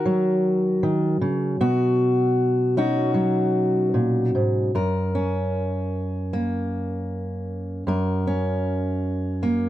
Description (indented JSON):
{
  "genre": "folk, solo fingerstyle acoustic guitar",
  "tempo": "77 BPM",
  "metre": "4/4",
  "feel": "straight",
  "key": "F# major",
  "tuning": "A4 = 444 Hz",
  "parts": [
    { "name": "fingerpicked steel-string acoustic guitar", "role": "solo", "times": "0.0-9.7 s", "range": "F#2 to A#4", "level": "-20 LUFS", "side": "equal", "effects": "none" }
  ],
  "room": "small room ambience",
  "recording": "dry, close 1970s-style studio recording",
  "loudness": "-20 LUFS",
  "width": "side -14 dB against mid",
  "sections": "0.0-4.8 A section; 4.8-9.7 B section",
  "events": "none",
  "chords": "0.0 D#m; 1.6 Badd9; 4.8 F#"
}